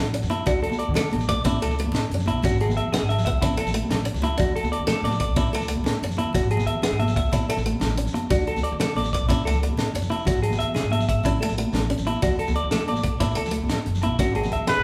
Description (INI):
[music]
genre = highlife guitar band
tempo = 122 BPM (dotted quarters)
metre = 12/8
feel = straight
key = A major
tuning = A4 = 442 Hz
[part]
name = upright bass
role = bass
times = 0.0-14.8 s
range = E1 to D3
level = -29 LUFS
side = equal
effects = none
[part]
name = picked steel-string acoustic guitar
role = accompaniment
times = 0.1-14.8 s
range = A3 to D4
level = -32 LUFS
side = equal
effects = none
[part]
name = tight funk drum kit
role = drums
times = 0.1-14.8 s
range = hi-hat, kick drum, snare drum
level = -30 LUFS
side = equal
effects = none
[part]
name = shekere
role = percussion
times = 0.1-14.8 s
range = none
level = -38 LUFS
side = equal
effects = none
[part]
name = congas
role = percussion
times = 0.2-14.8 s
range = none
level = -32 LUFS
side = equal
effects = none
[part]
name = clean electric guitar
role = arpeggios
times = 0.3-14.8 s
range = E4 to E5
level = -30 LUFS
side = equal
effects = spring reverb
[part]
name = agogo bells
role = percussion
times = 0.3-14.7 s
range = none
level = -38 LUFS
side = equal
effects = none
[part]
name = trumpet with straight mute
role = melody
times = 14.7-14.8 s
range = B4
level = -22 LUFS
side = equal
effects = none
[sound]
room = wet large studio reverb, RT60 1.2 s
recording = band playing live in one room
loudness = -23 LUFS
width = mono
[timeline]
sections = 0.0-14.8 A section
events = none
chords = 0.5 D; 1.5 A; 2.4 Eadd9; 3.4 A; 4.4 D; 5.4 A; 6.3 Eadd9; 7.3 A; 8.3 D; 9.3 A; 10.3 Eadd9; 11.2 A; 12.2 D; 13.2 A; 14.2 Eadd9